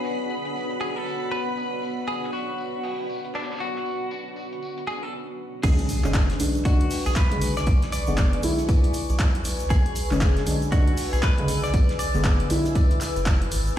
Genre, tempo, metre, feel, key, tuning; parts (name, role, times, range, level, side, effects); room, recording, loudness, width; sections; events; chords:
deep house; 118 BPM; 4/4; swing 61% on 16ths; B dorian; A4 = 441 Hz
direct-recorded clean electric guitar; melody; 0.0-12.5 s; D4 to D5; -32 LUFS; equal; wide subtle chorus, tape echo
deep dark ambient pad; sustained chords; 0.0-13.8 s; F#4 to E6; -34 LUFS; left 1 dB; chorus, built-in reverb, sidechain pumping
cloth-damped thuddy drum kit; drums; 0.0-13.7 s; hi-hat, snare drum, tambourine; -41 LUFS; left 2 dB; high-pass filter on hats, low-pass filter on hats, small room reverb, high-pass filter on snare, low-pass filter on snare, high-pass filter on perc, low-pass filter on perc, high-pass filter on room, low-pass filter on room
granular cloud pad; texture; 0.0-5.1 s; B3 to F#4; -34 LUFS; left 1 dB; built-in reverb, sidechain pumping
soft string machine; texture; 0.0-5.1 s; B5; -38 LUFS; right 1 dB; ensemble chorus
deep mellow chord stab; stabs; 5.6-13.8 s; C#3 to E4; -27 LUFS; equal; chorus, sidechain pumping, ping-pong delay
rubbery square bass; bass; 5.6-13.7 s; F#1 to B1; -27 LUFS; equal; tube saturation, sidechain pumping
electronic kick drum; drums; 5.6-13.4 s; -20 LUFS; equal; overdrive, small room reverb
punchy analog drum machine; drums; 5.6-13.8 s; crash cymbal, handclaps, hi-hat; -32 LUFS; equal; overdrive, small room reverb
tube shaker; percussion; 5.6-13.8 s; -41 LUFS; right 3 dB
impact; sound effects; 5.6-7.7 s; -32 LUFS; equal
small room ambience; played on a big sound system in a bare room, stone room reverb; -21 LUFS; side -11 dB against mid
0.0-5.6 A section; 5.6-13.8 B section
drop 5.6-13.8; impact 5.6-7.7
0.0 Bm69